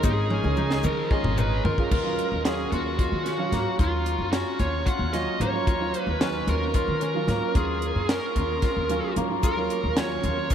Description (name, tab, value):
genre	progressive instrumental, band music in an uneven meter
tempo	224 BPM (eighths)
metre	7/8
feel	straight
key	Eb minor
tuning	A4 = 440 Hz
part	bluesy overdriven lead guitar	melody	0.0-10.5 s	F4 to Gb5	-28 LUFS	right 2 dB	distortion, ping-pong delay
part	dark baby grand piano	accompaniment	0.0-10.5 s	Gb3 to F5	-32 LUFS	right 5 dB	none
part	kora	arpeggios	0.0-10.5 s	Bb3 to F4	-30 LUFS	left 3 dB	ping-pong delay
part	upright bass	bass	0.0-10.5 s	Ab1 to Eb3	-28 LUFS	equal	none
part	tight funk drum kit	drums	0.0-10.5 s	crash cymbal, hi-hat, kick drum, snare drum, toms	-28 LUFS	equal	none
part	egg shaker	percussion	0.0-1.6, 9.4-10.5 s	none	-43 LUFS	left 18 dB	none
room	wet huge ambient reverb, RT60 7.4 s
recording	dreamy mix soaked in reverb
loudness	-22 LUFS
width	side -9 dB against mid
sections	0.0-1.9 A section; 1.9-10.5 B section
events	drum fill 0.3-1.9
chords	0.0 Bbm7; 1.9 Ebm9